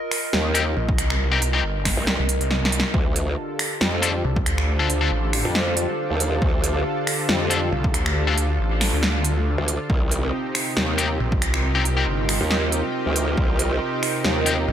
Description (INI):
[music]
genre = heavy wobble dubstep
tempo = 138 BPM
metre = 4/4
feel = swing 55% on 16ths, half-time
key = D phrygian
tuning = A4 = 440 Hz
[part]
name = warbly tape-like pad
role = texture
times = 0.0-14.7 s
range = F4 to F5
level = -30 LUFS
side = right 1 dB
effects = chorus, built-in reverb, sidechain pumping
[part]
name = big-room dance drum kit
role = drums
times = 0.1-14.6 s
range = finger snaps, hi-hat, snare drum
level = -24 LUFS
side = right 1 dB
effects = overdrive
[part]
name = growl bass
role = bass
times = 0.3-14.7 s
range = C2 to F2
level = -23 LUFS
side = equal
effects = chorus, overdrive
[part]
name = tight distorted guitar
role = stabs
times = 0.5-8.3, 11.0-14.5 s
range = C4 to A4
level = -26 LUFS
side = left 5 dB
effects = distortion, dub echo
[part]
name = snarling distorted saw bass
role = bass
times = 0.8-14.7 s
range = G1 to D2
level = -23 LUFS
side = equal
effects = distortion, overdrive
[part]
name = electronic kick drum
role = drums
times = 0.9-13.5 s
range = none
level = -24 LUFS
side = equal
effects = overdrive
[part]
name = lush unison pad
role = sustained chords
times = 3.2-14.7 s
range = C3 to A4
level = -28 LUFS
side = equal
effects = chorus, vintage 12-bit sampler grit, sidechain pumping
[sound]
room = light reverb, digital ambience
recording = none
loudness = -19 LUFS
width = side -10 dB against mid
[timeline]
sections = 0.0-14.7 A section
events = drum fill 2.5-2.9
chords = 0.0 Cm; 2.9 Dm; 9.9 Cm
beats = 0.33 0.77 | 1.20 1.64 2.07 2.51 | 2.94 3.38 3.81 4.25 | 4.68 5.12 5.55 5.98 | 6.42 6.85 7.29 7.72 | 8.16 8.59 9.03 9.46 | 9.90 10.33 10.77 11.20 | 11.64 12.07 12.51 12.94 | 13.38 13.81 14.24 14.68